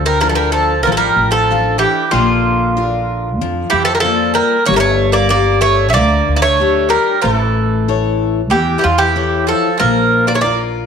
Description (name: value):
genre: greek folk, Greek bouzouki band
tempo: 94 BPM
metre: 4/4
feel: straight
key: unclear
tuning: A4 = 439 Hz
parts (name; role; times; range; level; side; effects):
- Greek bouzouki; melody; 0.0-10.6 s; F4 to E5; -14 LUFS; right 1 dB; none
- Greek bouzouki; second line; 0.0-10.6 s; D3 to C#4; -21 LUFS; right 10 dB; none
- picked steel-string acoustic guitar; accompaniment; 0.0-10.9 s; D3 to F5; -19 LUFS; left 12 dB; none
- upright bass; bass; 0.0-10.9 s; G1 to F2; -18 LUFS; equal; none
room: moderate echo chamber reverb, RT60 1.4 s, small room ambience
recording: 1960s-style stereo with parts hard left and right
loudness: -12 LUFS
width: side -6 dB against mid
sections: 0.0-10.9 A section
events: none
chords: 0.0 Dm; 2.1 Bb; 4.7 Gm; 7.2 A; 9.8 Bb